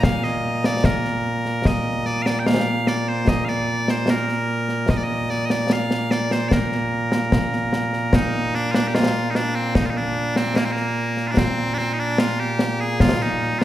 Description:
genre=scottish traditional, Scottish pipe music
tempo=74 BPM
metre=2/4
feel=straight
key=Bb major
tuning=A4 = 440 Hz
part: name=loud bright bagpipes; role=melody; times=0.0-13.6 s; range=Bb2 to G5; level=-21 LUFS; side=right 1 dB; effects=none
part: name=concert snare drum and concert bass drum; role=drums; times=0.0-13.6 s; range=none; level=-21 LUFS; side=left 1 dB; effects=none
room=wet scoring stage reverb, RT60 1.9 s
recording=heard from further back in the room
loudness=-19 LUFS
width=side -13 dB against mid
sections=0.0-8.1 A section; 8.1-13.6 A section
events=none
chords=none

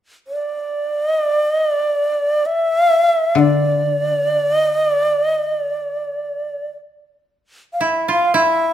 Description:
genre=japanese traditional, Japanese chamber music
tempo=free time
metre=none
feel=none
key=D hirajoshi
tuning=A4 = 440 Hz
part: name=breathy bright long shakuhachi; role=melody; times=0.3-8.7 s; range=D5 to F5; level=-16 LUFS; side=equal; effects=none
part: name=koto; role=accompaniment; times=3.4-6.7 s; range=D3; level=-18 LUFS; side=left 6 dB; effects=none
part: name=koto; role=second line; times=7.8-8.7 s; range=E4 to F4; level=-16 LUFS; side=right 4 dB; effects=none
room=moderate recital hall reverb, RT60 1.2 s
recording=minimal, uncompressed stereo recording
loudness=-15 LUFS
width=side -11 dB against mid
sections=0.0-8.3 A section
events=none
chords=none

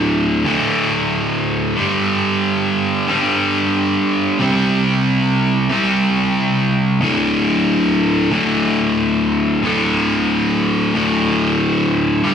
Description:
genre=rock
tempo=92 BPM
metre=4/4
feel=straight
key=unclear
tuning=A4 = 440 Hz
part: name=overdriven electric guitar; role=solo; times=0.0-12.3 s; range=D2 to C4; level=-14 LUFS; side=equal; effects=spring reverb, slapback echo
room=moderate club reverb, RT60 0.5 s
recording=live gig heard through the venue's PA, club reverb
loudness=-14 LUFS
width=side -8 dB against mid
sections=0.0-12.3 A section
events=none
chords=0.0 D5; 1.8 G5; 4.4 C5; 7.0 D5

